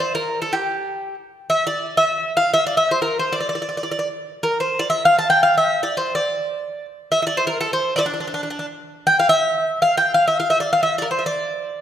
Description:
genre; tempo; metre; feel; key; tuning
turkish; free time; none; none; D makam ussak; A4 = 440 Hz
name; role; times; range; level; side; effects
Greek bouzouki; solo; 0.0-11.8 s; D4 to A5; -17 LUFS; equal; none
room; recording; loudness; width
wet scoring stage reverb, RT60 1.8 s; recorded in a church or concert hall; -17 LUFS; side -10 dB against mid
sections
0.0-8.8 A section; 8.8-11.8 A section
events
none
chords
none

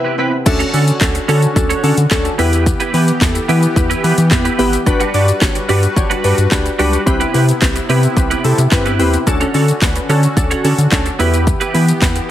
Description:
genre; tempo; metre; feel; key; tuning
dance-pop; 109 BPM; 4/4; straight; D major; A4 = 440 Hz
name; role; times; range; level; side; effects
glassy digital keys; accompaniment; 0.0-12.2 s; B3 to D5; -17 LUFS; left 1 dB; chorus, sidechain pumping
warm analog pad; sustained chords; 0.0-12.3 s; C3 to B4; -24 LUFS; left 1 dB; chorus, tremolo, sidechain pumping
twelve-string electric guitar; riff; 0.0-12.2 s; G3 to C#5; -21 LUFS; right 5 dB; ensemble chorus
round analog bass; bass; 0.5-12.2 s; G1 to E3; -15 LUFS; equal; sidechain pumping
house drum kit; drums; 0.5-12.3 s; crash cymbal, handclaps, hi-hat, kick drum, shaker, snare drum; -17 LUFS; equal; none
room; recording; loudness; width
light reverb; heavily compressed radio sound, multiband compression; -11 LUFS; side -12 dB against mid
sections
0.5-12.3 A section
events
break 0.0-0.5; drop 0.5-12.3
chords
0.5 Dmaj7; 2.4 Em; 4.9 Gmaj7; 7.1 Cmaj7; 9.3 Dmaj7; 11.2 Em

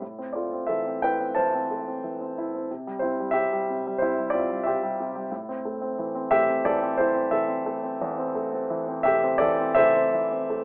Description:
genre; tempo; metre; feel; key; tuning
classical, lyrical solo piano; 90 BPM; 4/4; uneven beats, rubato; A minor; A4 = 439 Hz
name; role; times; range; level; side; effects
warm grand piano; solo; 0.0-10.6 s; E2 to A5; -23 LUFS; equal; none
room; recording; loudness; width
light reverb; telephone sound; -23 LUFS; side -26 dB against mid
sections
0.0-10.6 A section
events
none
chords
0.0 Am; 2.7 C; 5.3 Am

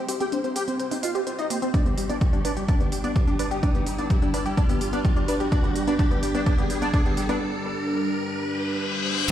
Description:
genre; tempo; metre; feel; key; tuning
melodic techno; 127 BPM; 4/4; straight; unclear; A4 = 439 Hz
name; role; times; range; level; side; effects
wide unison lead; melody; 0.0-7.4 s; G3 to G4; -30 LUFS; equal; ensemble chorus, sidechain pumping, ping-pong delay
big bright polysynth; second line; 0.0-7.4 s; G4 to G5; -35 LUFS; left 1 dB; sidechain pumping, ping-pong delay
dark analog pad; sustained chords; 0.4-9.3 s; G3 to Eb5; -31 LUFS; right 1 dB; chorus, phaser, sidechain pumping
riser and reverse cymbal; sound effects; 0.0-9.3 s; none; -32 LUFS; left 1 dB; none
tight sequenced synth; arpeggios; 0.1-7.4 s; Bb3 to C5; -30 LUFS; left 1 dB; chorus, phaser, sidechain pumping, ping-pong delay
electronic hi-hat; drums; 0.1-7.4 s; none; -36 LUFS; right 2 dB; none
electronic kick drum; drums; 1.7-7.0 s; none; -23 LUFS; equal; overdrive
room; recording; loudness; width
light reverb; played on a big sound system in a bare room, stone room reverb; -22 LUFS; side -11 dB against mid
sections
0.0-9.3 A section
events
build-up 0.0-9.3; riser 0.0-9.3; filter sweep on synth arpeggio sound 0.0-9.3; filter sweep on analog synth lead 0.0-9.3; filter sweep on analog polysynth 0.0-9.3; filter sweep on analog synth pad 0.0-9.3; break 7.4-9.3; reverse cymbal 8.4-9.3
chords
0.0 Cm; 1.7 G

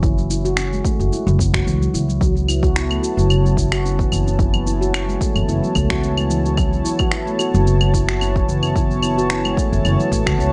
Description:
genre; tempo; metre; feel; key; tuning
organic downtempo; 110 BPM; 4/4; swing 54% on 16ths; F# minor; A4 = 440 Hz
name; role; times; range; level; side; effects
handpan; arpeggios; 0.0-10.5 s; C#3 to F#4; -24 LUFS; equal; delay
upright bass; bass; 0.0-10.5 s; F#1 to C#2; -22 LUFS; equal; none
electronic kick drum; drums; 0.0-10.4 s; none; -23 LUFS; equal; none
electronic shaker, finger snaps and claves; drums; 0.0-10.5 s; none; -27 LUFS; equal; none
warm analog pad; sustained chords; 2.2-10.5 s; B3 to A5; -27 LUFS; equal; chorus, sidechain pumping
room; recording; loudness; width
light reverb, digital ambience; nothing above 10.5 kHz; -18 LUFS; mono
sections
0.0-10.5 A section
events
none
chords
0.0 F#m7

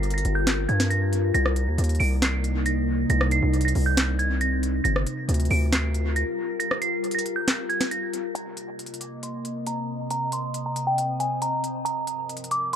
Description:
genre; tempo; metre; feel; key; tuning
hip hop, trap; 137 BPM; 4/4; half-time; C minor; A4 = 437 Hz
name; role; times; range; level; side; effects
delicate synth tine bell; melody; 0.0-12.8 s; G5 to D7; -28 LUFS; right 2 dB; chorus, low-pass filter, dub echo
glassy FM pad; sustained chords; 0.0-12.8 s; G2 to Eb5; -29 LUFS; left 1 dB; ensemble chorus, built-in reverb, low-pass filter
distorted 808-style bass; bass; 0.0-6.2 s; G1 to G2; -23 LUFS; equal; distortion
trap drum kit; drums; 0.0-12.8 s; handclaps, hi-hat, rim click, snare drum; -28 LUFS; equal; dub echo
room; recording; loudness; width
light reverb; echo-heavy mix; -22 LUFS; side -9 dB against mid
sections
0.0-8.4 A section; 8.4-12.8 B section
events
kick muted 6.6-8.4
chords
0.0 Gm7; 1.3 Cm7; 4.8 Gm7; 8.4 Cm7; 11.9 Gm7

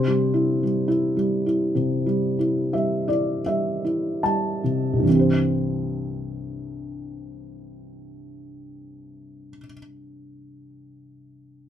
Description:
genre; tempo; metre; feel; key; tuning
classical, lyrical solo piano; 35-58 BPM; 4/4; rubato; C major; A4 = 440 Hz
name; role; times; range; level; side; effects
felt-muted upright piano; solo; 0.0-11.7 s; C2 to A5; -22 LUFS; equal; none
room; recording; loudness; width
little or no reverb; close, detailed microphones; -20 LUFS; side -10 dB against mid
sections
0.0-5.1 A section; 5.1-11.3 B section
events
slowing down 0.0-5.1; felt piano fill 2.1-5.1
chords
0.0 C

